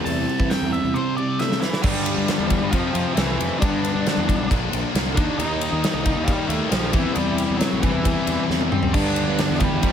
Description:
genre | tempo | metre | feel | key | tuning
quiet-loud alternative rock | 135 BPM | 4/4 | straight | unclear | A4 = 442 Hz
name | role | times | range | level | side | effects
octave-fuzz lead guitar | melody | 0.0-9.9 s | E3 to A5 | -26 LUFS | right 1 dB | distortion
picked acoustic archtop guitar | arpeggios | 0.0-1.8 s | E2 to A3 | -32 LUFS | left 9 dB | none
distorted electric guitar | riff | 0.0-1.6, 8.9-9.9 s | F2 to C4 | -26 LUFS | right 13 dB | distortion
sludgy distorted guitar | riff | 0.0-9.9 s | F2 to Eb4 | -26 LUFS | left 10 dB | overdrive
fuzz fingered electric bass | bass | 0.0-9.9 s | A1 to E3 | -27 LUFS | right 1 dB | overdrive
big rock drum kit | drums | 0.1-9.9 s | crash cymbal, hi-hat, kick drum, ride cymbal, snare drum, toms | -24 LUFS | equal | none
tight distorted guitar | riff | 1.8-9.9 s | F2 to E4 | -28 LUFS | right 1 dB | distortion
room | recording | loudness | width
light reverb, small room ambience | none | -19 LUFS | side -8 dB against mid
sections
0.0-1.8 A section; 1.8-9.9 B section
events
lead electric guitar solo 0.0-1.8; drum fill 1.4-1.8, 8.5-8.9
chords
0.0 C6/E; 1.8 G; 2.7 F; 3.6 G; 4.5 Bb; 5.2 Eb; 6.9 C; 8.9 G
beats
| 0.06 0.51 0.95 1.40 | 1.84 2.28 2.73 3.17 | 3.62 4.06 4.50 4.95 | 5.39 5.83 6.28 6.72 | 7.17 7.61 8.06 8.50 | 8.95 9.39 9.84

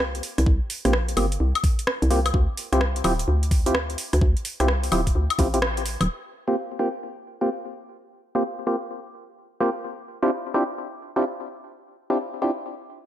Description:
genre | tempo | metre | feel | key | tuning
UK garage, two-step garage | 128 BPM | 4/4 | swing 64% on 16ths | unclear | A4 = 440 Hz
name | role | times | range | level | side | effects
hollow knocking FM bass | bass | 0.0-6.1 s | D1 to D2 | -23 LUFS | equal | sidechain pumping
garage drum kit | drums | 0.0-6.1 s | hi-hat, rim click, woodblock | -27 LUFS | left 1 dB | overdrive, low-pass filter on hats, low-pass filter on snare, low-pass filter on perc
electronic kick drum | drums | 0.5-5.5 s | none | -21 LUFS | equal | overdrive
percussive organ stab | stabs | 0.9-12.5 s | Bb3 to G4 | -25 LUFS | equal | chorus, ping-pong delay
room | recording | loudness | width
light reverb, digital ambience | none | -21 LUFS | side -12 dB against mid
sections
0.0-6.1 A section; 6.1-13.1 B section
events
break 5.6-6.1; band accent 5.6; filter sweep on synth stab 6.1-13.1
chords
0.0 C7sus4; 2.3 Dm11; 6.1 C7sus4; 9.8 Dm11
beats
0.00 | 0.47 0.93 1.40 1.87 | 2.34 2.81 3.28 3.75 | 4.21 4.68 5.15 5.62 | 6.09 6.56 7.03 7.50 | 7.96 8.43 8.90 9.37 | 9.84 10.31 10.78 11.25 | 11.71 12.18

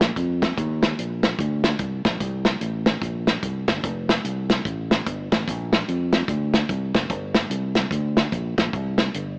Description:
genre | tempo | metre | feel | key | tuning
uptempo gospel | 147 BPM | 4/4 | swing 62% on 8ths | Bb major | A4 = 441 Hz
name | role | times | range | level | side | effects
fingered electric bass | bass | 0.0-9.4 s | F1 to F2 | -25 LUFS | equal | tube saturation
warm soul drum kit | drums | 0.0-9.3 s | hi-hat, kick drum, snare drum | -21 LUFS | equal | none
room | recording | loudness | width
light reverb | worn, warbling old tape, cassette tape, warbly pitch drift, small speaker sound | -20 LUFS | side -36 dB against mid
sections
0.0-9.4 A section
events
none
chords
none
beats
0.16 | 0.57 0.98 1.39 1.80 | 2.21 2.61 3.02 3.43 | 3.84 4.25 4.66 5.06 | 5.47 5.88 6.29 6.69 | 7.10 7.51 7.92 8.32 | 8.73 9.14

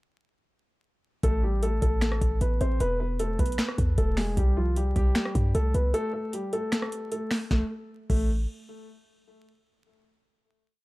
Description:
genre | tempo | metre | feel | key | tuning
hip hop, trap | 153 BPM | 4/4 | half-time | A minor | A4 = 439 Hz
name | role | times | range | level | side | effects
dark grand piano | melody | 1.2-8.3 s | F3 to C5 | -30 LUFS | equal | low-pass filter, analog delay
warm 808-style bass | bass | 1.2-8.5 s | E1 to G2 | -26 LUFS | equal | none
booming analog drum machine | drums | 1.2-8.3 s | crash cymbal, finger snaps, hi-hat, kick drum, rim click, snare drum | -26 LUFS | equal | overdrive
room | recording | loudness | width
digital ambience | dry, gritty hardware recording, vinyl crackle | -24 LUFS | side -20 dB against mid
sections
1.2-7.5 hook; 7.5-9.1 final note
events
break 5.9-7.5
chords
1.2 Am; 2.8 E; 4.4 C5; 5.9 Gsus2; 7.5 N.C.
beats
| 1.23 1.63 2.02 2.41 | 2.80 3.19 3.59 3.98 | 4.37 4.76 5.16 5.55 | 5.94 6.33 6.72 7.12 | 7.51 7.90 8.29

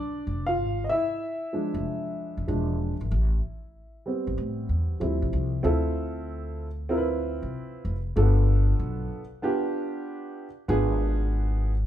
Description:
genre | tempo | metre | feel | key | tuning
hip hop, jazz-hop | 95 BPM | 4/4 | swing 66% on 16ths | D dorian | A4 = 440 Hz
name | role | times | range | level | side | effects
dark upright piano | accompaniment | 0.0-11.7 s | F3 to F5 | -28 LUFS | right 1 dB | none
upright bass | bass | 0.3-11.9 s | E1 to A2 | -26 LUFS | equal | none
room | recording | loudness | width
moderate large studio reverb, RT60 1.1 s | band playing live in one room | -25 LUFS | side -11 dB against mid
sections
0.0-5.6 A section; 5.6-11.9 B section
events
upright piano solo 0.0-5.6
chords
0.0 G7(no3) (rootless); 0.6 E7b9; 3.1 Am9; 5.0 Dm11; 5.6 Dm9; 8.2 G9; 10.7 Fdim7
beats
| 0.59 1.22 1.85 2.48 | 3.11 3.74 4.38 5.01 | 5.64 6.27 6.90 7.53 | 8.16 8.80 9.43 10.06 | 10.69 11.32

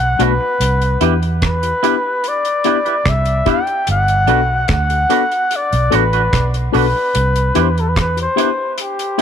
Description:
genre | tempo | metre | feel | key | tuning
lovers rock reggae | 73 BPM | 4/4 | straight | unclear | A4 = 440 Hz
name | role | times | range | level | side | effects
breathy flugelhorn | melody | 0.0-9.2 s | G4 to G5 | -17 LUFS | left 1 dB | tape echo
vintage muted fingered electric bass | bass | 0.0-8.3 s | G1 to E2 | -17 LUFS | right 1 dB | tube saturation
mellow tine electric piano | accompaniment | 0.2-9.2 s | A3 to A4 | -21 LUFS | left 15 dB | medium stereo tremolo
twangy electric guitar | stabs | 0.2-9.2 s | D4 to B4 | -22 LUFS | right 14 dB | none
deep reggae drum kit | drums | 0.2-9.2 s | hi-hat, kick drum, rim click | -21 LUFS | right 1 dB | none
room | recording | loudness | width
light reverb, small room ambience | 1960s-style stereo with parts hard left and right | -13 LUFS | side -8 dB against mid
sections
0.0-9.2 A section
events
none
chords
0.0 Gmaj7 (rootless); 0.6 Cmaj7; 3.9 Gmaj7; 7.1 Cmaj7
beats
| 0.60 1.42 2.24 3.05 | 3.87 4.69 5.50 6.32 | 7.14 7.96 8.77

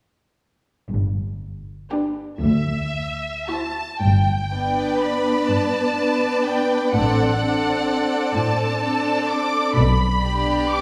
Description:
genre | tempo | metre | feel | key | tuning
classical, slow romantic movement for string orchestra | 35-43 BPM (dotted quarters) | 6/8 | rubato | G major | A4 = 443 Hz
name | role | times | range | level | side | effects
clear studio cello section | bass | 0.9-10.8 s | D2 to B2 | -26 LUFS | equal | none
clear studio double bass section | bass | 0.9-10.7 s | G1 to D2 | -27 LUFS | equal | none
rich studio violin section | melody | 1.9-10.8 s | B4 to D6 | -27 LUFS | equal | none
clear studio violin section | second line | 1.9-10.8 s | F#4 to D5 | -26 LUFS | equal | none
warm studio viola section | accompaniment | 1.9-10.8 s | B3 to E4 | -27 LUFS | equal | none
room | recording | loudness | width
wet scoring stage reverb, RT60 1.6 s | heard from further back in the room | -21 LUFS | mono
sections
0.9-4.0 A section; 4.0-10.8 B section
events
none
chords
0.9 G; 2.4 D9; 4.0 G; 6.9 D7/A; 9.8 G/B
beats
| 0.90 2.42 | 4.03 5.50 | 6.94 8.34 | 9.76

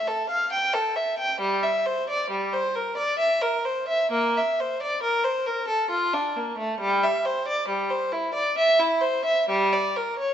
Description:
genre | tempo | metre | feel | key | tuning
classical, baroque-style suite movement for unaccompanied violin | 67 BPM | 3/4 | rubato | unclear | A4 = 441 Hz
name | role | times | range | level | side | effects
warm violin | solo | 0.0-10.3 s | G3 to G5 | -22 LUFS | equal | none
room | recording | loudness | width
wet recital hall reverb, RT60 1.4 s | recorded in a church or concert hall, nothing above 7.8 kHz | -22 LUFS | side -9 dB against mid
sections
0.0-10.3 A section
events
none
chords
none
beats
0.51 | 1.40 2.30 3.19 | 4.11 5.02 5.91 | 6.79 7.67 8.56 | 9.49

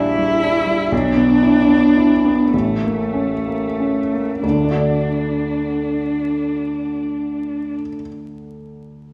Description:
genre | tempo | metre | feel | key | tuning
classical, slow romantic movement for piano trio | 29-42 BPM (dotted quarters) | 6/8 | rubato | unclear | A4 = 440 Hz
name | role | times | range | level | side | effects
rich cello | second line | 0.0-7.7 s | A3 to E4 | -21 LUFS | equal | none
clear grand piano | accompaniment | 0.0-9.1 s | A1 to D5 | -22 LUFS | equal | none
room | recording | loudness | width
wet recital hall reverb, RT60 1.6 s | recorded in a church or concert hall, vinyl crackle | -18 LUFS | mono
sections
0.0-4.4 A section; 4.4-7.9 B section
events
slowing down 0.0-4.4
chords
0.0 Gm/Bb; 0.9 E5/B; 2.5 A; 4.4 D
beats
| 0.92 2.52 | 4.42 6.16

